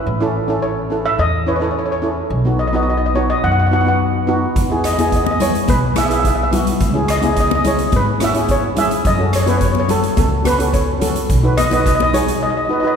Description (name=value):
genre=calypso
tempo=107 BPM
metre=4/4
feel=straight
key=unclear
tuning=A4 = 442 Hz
part: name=steel pan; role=accompaniment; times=0.0-13.0 s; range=B3 to B4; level=-20 LUFS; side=right 1 dB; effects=none
part: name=upright bass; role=bass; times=0.1-12.3 s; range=G#1 to F#2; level=-20 LUFS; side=left 1 dB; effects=none
part: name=steel pan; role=melody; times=0.6-12.9 s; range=A4 to F#5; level=-19 LUFS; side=equal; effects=none
part: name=street-band drum kit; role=drums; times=4.6-12.4 s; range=hi-hat, kick drum, rim click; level=-21 LUFS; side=equal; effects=none
part: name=congas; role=percussion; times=5.0-12.3 s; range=none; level=-22 LUFS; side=left 4 dB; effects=none
room=wet church reverb, RT60 2.9 s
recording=recorded in a church or concert hall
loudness=-14 LUFS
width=side -7 dB against mid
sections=0.0-13.0 A section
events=break 12.4-13.0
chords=0.1 A; 2.3 B; 4.6 E; 6.8 C#m; 9.1 F#m; 11.3 B6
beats=| 0.06 0.62 1.19 1.75 | 2.31 2.87 3.44 4.00 | 4.56 5.12 5.68 6.25 | 6.81 7.37 7.93 8.49 | 9.05 9.61 10.18 10.74 | 11.30 11.86 12.42